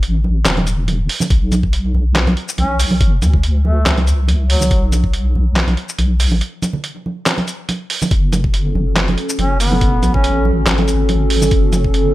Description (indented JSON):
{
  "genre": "deep dubstep",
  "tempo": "141 BPM",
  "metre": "4/4",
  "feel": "swing 55% on 16ths, half-time",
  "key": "F# minor",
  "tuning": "A4 = 437 Hz",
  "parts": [
    { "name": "deep soft wobble bass", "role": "bass", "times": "0.0-12.1 s", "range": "E1 to D2", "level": "-16 LUFS", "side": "equal", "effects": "chorus" },
    { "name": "trip hop sampler-style drum kit", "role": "drums", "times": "0.0-12.0 s", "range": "handclaps, hi-hat, shaker, snare drum", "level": "-19 LUFS", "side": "equal", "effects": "small room reverb" },
    { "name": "congas", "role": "percussion", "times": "0.2-11.8 s", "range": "none", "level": "-22 LUFS", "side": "right 2 dB", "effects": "dub echo" },
    { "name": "electronic kick drum", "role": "drums", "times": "1.3-5.1, 8.1-11.9 s", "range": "none", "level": "-16 LUFS", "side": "equal", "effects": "small room reverb" },
    { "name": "mellow duduk", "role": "melody", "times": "2.6-4.8, 9.4-10.5 s", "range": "F#3 to C#4", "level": "-22 LUFS", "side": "equal", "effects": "dub echo" },
    { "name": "dark analog pad", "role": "sustained chords", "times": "8.7-12.1 s", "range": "C#4 to A4", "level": "-20 LUFS", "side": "equal", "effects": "chorus" }
  ],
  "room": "little or no reverb",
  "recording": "none",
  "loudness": "-13 LUFS",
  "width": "side -16 dB against mid",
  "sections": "0.0-12.1 A section",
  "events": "break 6.4-8.1",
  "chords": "0.0 N.C.; 8.1 F#m"
}